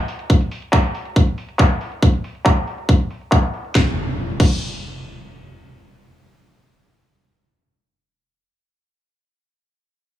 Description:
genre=psychedelic trance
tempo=139 BPM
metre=4/4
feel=straight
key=none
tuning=none
part: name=garage drum kit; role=drums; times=0.1-4.5 s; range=crash cymbal, handclaps, hi-hat, snare drum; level=-23 LUFS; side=equal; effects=overdrive, low-pass filter on hats, low-pass filter on perc, low-pass filter on snare, low-pass filter on cymbals
part: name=electronic kick drum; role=drums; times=0.3-4.5 s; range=none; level=-14 LUFS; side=equal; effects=overdrive
part: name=impact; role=sound effects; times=3.8-8.5 s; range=none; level=-26 LUFS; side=equal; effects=none
room=light reverb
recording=small room ambience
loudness=-16 LUFS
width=side -12 dB against mid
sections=0.0-3.8 A section; 3.8-7.2 B section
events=none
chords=none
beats=| 0.30 0.73 1.16 1.59 | 2.02 2.46 2.89 3.32 | 3.75 4.18 4.62 5.05 | 5.48 5.91 6.34 6.77

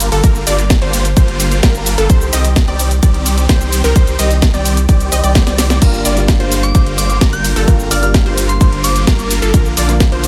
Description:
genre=EDM, festival progressive house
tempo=129 BPM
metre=4/4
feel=straight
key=G minor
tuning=A4 = 438 Hz
part: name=unison pluck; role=arpeggios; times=0.0-10.3 s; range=A4 to Eb5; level=-25 LUFS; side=equal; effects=sidechain pumping, digital delay
part: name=big supersaw lead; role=riff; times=0.0-10.3 s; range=D3 to Eb5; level=-22 LUFS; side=equal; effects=phaser, sidechain pumping, digital delay
part: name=saturated sub bass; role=bass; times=0.0-10.3 s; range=G1 to C2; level=-19 LUFS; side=equal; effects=sidechain pumping
part: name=house drum kit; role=drums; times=0.0-10.3 s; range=crash cymbal, hi-hat, shaker, snare drum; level=-20 LUFS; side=equal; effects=none
part: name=electronic kick drum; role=drums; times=0.2-10.1 s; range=none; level=-13 LUFS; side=equal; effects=none
part: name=felt-muted upright piano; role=accompaniment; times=5.8-10.3 s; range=G2 to F4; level=-24 LUFS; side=equal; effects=sidechain pumping, digital delay
part: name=soft synth bell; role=melody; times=6.6-9.2 s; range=C6 to G6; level=-24 LUFS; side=equal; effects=chorus, phaser, digital delay
room=digital ambience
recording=none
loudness=-13 LUFS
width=mono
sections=0.0-10.3 A section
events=drum fill 5.5-5.8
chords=0.0 Gm7; 2.1 Cm; 5.8 Gm7; 9.5 Bb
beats=| 0.24 0.70 1.17 1.63 | 2.10 2.56 3.03 3.49 | 3.96 4.42 4.89 5.35 | 5.82 6.28 6.75 7.21 | 7.68 8.14 8.61 9.07 | 9.54 10.00

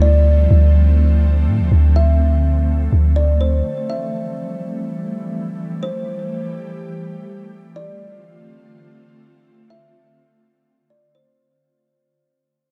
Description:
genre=hip hop, atmospheric cloud-rap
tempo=124 BPM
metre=4/4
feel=half-time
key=unclear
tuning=A4 = 445 Hz
part: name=kalimba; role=melody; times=0.0-11.4 s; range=C5 to E5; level=-29 LUFS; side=equal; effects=low-pass filter, tape echo
part: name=ethereal airy pad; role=sustained chords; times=0.0-11.4 s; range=D3 to G4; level=-28 LUFS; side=equal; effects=ensemble chorus, built-in reverb
part: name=warm 808-style bass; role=bass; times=0.0-3.6 s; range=D2 to A2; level=-15 LUFS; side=equal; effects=none
room=small room reverb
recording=none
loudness=-17 LUFS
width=mono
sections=0.0-11.4 A section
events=fade-out 0.0-11.4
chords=0.0 Dm7; 3.7 Fmaj9; 7.5 Dm7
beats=0.26 0.75 1.23 | 1.72 2.20 2.68 3.17 | 3.65 4.13 4.62 5.10 | 5.59 6.07 6.55 7.04 | 7.52 8.01 8.49 8.97 | 9.46 9.94 10.43 10.91

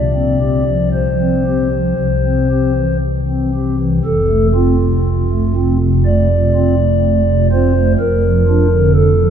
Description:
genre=classical, chorale-style piece for pipe organ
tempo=56-64 BPM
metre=4/4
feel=rubato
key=F major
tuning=A4 = 440 Hz
part: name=pipe organ, stopped flute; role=solo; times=0.0-9.3 s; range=F1 to D5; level=-12 LUFS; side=equal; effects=none
room=wet cathedral reverb, RT60 5.0 s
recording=minimal, uncompressed stereo recording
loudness=-12 LUFS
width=side -8 dB against mid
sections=0.0-4.0 A section; 4.0-9.3 B section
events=none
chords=0.0 Csus4; 2.0 C; 4.0 F; 8.0 Bb/F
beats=0.92 1.97 3.00 | 4.04 5.03 6.05 7.02 | 7.99 8.94

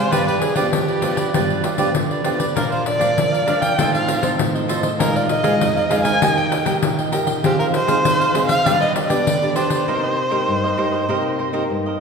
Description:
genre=samba and choro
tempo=98 BPM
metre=4/4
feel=straight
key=unclear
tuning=A4 = 439 Hz
part: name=warm erhu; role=melody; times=0.0-11.7 s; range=G4 to Ab5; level=-21 LUFS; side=right 1 dB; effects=none
part: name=cavaquinho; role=accompaniment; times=0.0-12.0 s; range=D4 to G5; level=-22 LUFS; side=right 3 dB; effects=none
part: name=nylon-string guitar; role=accompaniment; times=0.0-12.0 s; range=F2 to Ab4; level=-23 LUFS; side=left 1 dB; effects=none
part: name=pandeiro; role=percussion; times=0.1-9.9 s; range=none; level=-22 LUFS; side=left 2 dB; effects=none
room=wet scoring stage reverb, RT60 2.0 s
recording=recorded in a church or concert hall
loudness=-16 LUFS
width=side -5 dB against mid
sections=0.0-12.0 A section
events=break 9.9-12.0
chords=0.1 G7; 2.6 Bb; 3.8 F7/A; 5.0 Bb7sus4; 6.2 Eb; 7.4 Fm7; 8.7 G; 9.9 Cm7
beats=| 0.12 0.73 1.34 1.95 | 2.56 3.17 3.78 4.39 | 5.00 5.61 6.22 6.83 | 7.44 8.05 8.66 9.27 | 9.88 10.48 11.09 11.70

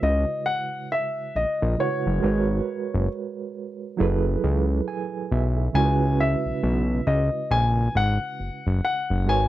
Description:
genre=R&B, neo-soul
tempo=68 BPM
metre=4/4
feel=swing 61% on 16ths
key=C# dorian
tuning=A4 = 439 Hz
part: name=warm grand piano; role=melody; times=0.0-9.5 s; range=C#5 to G#5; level=-26 LUFS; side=left 2 dB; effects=slapback echo
part: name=overdriven reed electric piano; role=accompaniment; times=0.0-9.5 s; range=C#3 to G#5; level=-28 LUFS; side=right 6 dB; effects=fast tremolo
part: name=fat analog bass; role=bass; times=0.0-9.5 s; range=F#1 to C#2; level=-22 LUFS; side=left 1 dB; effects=none
room=little or no reverb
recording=dry, close 1970s-style studio recording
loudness=-21 LUFS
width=side -14 dB against mid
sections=0.0-9.5 A section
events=reed electric piano fill 4.4-5.7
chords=0.0 C#m7; 2.2 G#m11; 4.0 F#m11; 5.7 C#m7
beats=0.45 1.33 | 2.21 3.09 3.98 4.86 | 5.74 6.62 7.50 8.39 | 9.27

